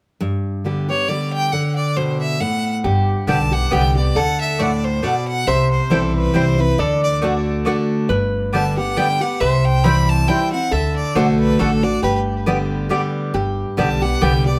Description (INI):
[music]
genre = bluegrass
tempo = 137 BPM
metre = 3/4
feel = swing 55% on 8ths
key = G major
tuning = A4 = 440 Hz
[part]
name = picked steel-string acoustic guitar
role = accompaniment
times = 0.2-14.6 s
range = G2 to G4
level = -22 LUFS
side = equal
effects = none
[part]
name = clear fiddle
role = melody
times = 0.9-14.6 s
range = A4 to B5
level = -25 LUFS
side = equal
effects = tape echo
[part]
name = lap resonator guitar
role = second line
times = 2.8-14.6 s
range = G4 to D5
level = -27 LUFS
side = equal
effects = none
[part]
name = upright bass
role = bass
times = 2.8-14.6 s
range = G1 to D2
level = -24 LUFS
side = equal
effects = none
[part]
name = mandolin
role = stabs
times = 3.3-14.3 s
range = A3 to G5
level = -25 LUFS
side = equal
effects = none
[sound]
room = wet studio reverb, RT60 0.5 s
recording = heard from further back in the room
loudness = -18 LUFS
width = mono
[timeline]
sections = 0.2-2.8 A section; 2.8-13.3 B section; 13.3-14.6 B section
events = none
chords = 0.2 G; 1.5 D5; 2.8 G; 4.2 D; 5.5 C; 6.8 D; 8.1 G; 9.4 C; 10.7 D; 12.0 G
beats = | 0.21 0.65 1.09 | 1.53 1.97 2.40 | 2.84 3.28 3.72 | 4.16 4.60 5.04 | 5.47 5.91 6.35 | 6.79 7.22 7.66 | 8.10 8.54 8.97 | 9.41 9.85 10.28 | 10.72 11.16 11.60 | 12.03 12.47 12.91 | 13.34 13.78 14.22